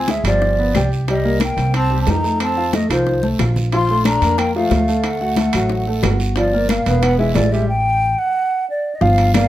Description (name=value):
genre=Afro-Cuban jazz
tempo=181 BPM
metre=4/4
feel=straight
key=G minor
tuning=A4 = 440 Hz
part: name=mellow hollow silver concert flute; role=melody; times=0.0-9.5 s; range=C5 to C6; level=-20 LUFS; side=equal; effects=plate reverb
part: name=breathy tenor saxophone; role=second line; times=0.0-7.7 s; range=Eb3 to F4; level=-23 LUFS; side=left 2 dB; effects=none
part: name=warm baby grand piano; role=accompaniment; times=0.0-9.5 s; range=E3 to G5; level=-22 LUFS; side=equal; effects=none
part: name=upright bass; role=bass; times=0.0-9.5 s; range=E1 to F2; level=-19 LUFS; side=equal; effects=none
part: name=bongos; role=percussion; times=0.1-9.5 s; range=none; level=-27 LUFS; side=left 6 dB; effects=none
part: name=congas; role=percussion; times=0.1-9.5 s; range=none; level=-25 LUFS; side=left 2 dB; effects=none
part: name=guiro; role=percussion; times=0.1-9.5 s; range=none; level=-35 LUFS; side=right 5 dB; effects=none
part: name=timbales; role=percussion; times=0.1-9.5 s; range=none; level=-27 LUFS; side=right 6 dB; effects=none
part: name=claves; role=percussion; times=0.3-7.2, 9.3-9.5 s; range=none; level=-34 LUFS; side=left 4 dB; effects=none
room=moderate studio reverb, RT60 0.7 s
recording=none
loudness=-15 LUFS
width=side -13 dB against mid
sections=0.0-9.0 A section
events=drum fill 3.2-3.7; stop 7.7-9.0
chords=0.4 G7; 1.1 Cm7; 2.4 F7; 3.7 Bbmaj7; 5.0 D; 6.4 Gm7; 7.0 E5; 7.7 Gsus2/A; 8.4 N.C.